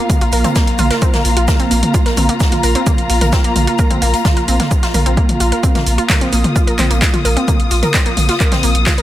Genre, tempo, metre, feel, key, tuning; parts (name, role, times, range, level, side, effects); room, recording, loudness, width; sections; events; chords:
driving peak-time techno; 130 BPM; 4/4; straight; A4 = 440 Hz
wide unison pluck; riff; 0.0-9.0 s; Bb3 to Bb4; -20 LUFS; right 1 dB; sidechain pumping, dub echo
muted studio string section; texture; 0.0-9.0 s; Bb3 to Eb6; -19 LUFS; equal; sidechain pumping
electronic kick drum; drums; 0.1-9.0 s; -15 LUFS; equal; overdrive
punchy analog drum machine; drums; 0.1-9.0 s; handclaps, hi-hat, toms; -19 LUFS; left 1 dB; overdrive, sidechain pumping on hats, sidechain pumping on toms
street-band drum kit; drums; 0.1-9.0 s; hi-hat, shaker, snare drum; -27 LUFS; equal; high-pass filter on hats, high-pass filter on snare, high-pass filter on perc, high-pass filter on room
saturated sub bass; bass; 0.2-9.0 s; Bb1; -17 LUFS; equal; tube saturation, sidechain pumping, low-pass filter
light reverb; -12 LUFS; side -13 dB against mid
0.0-9.0 A section
0.0 Bb5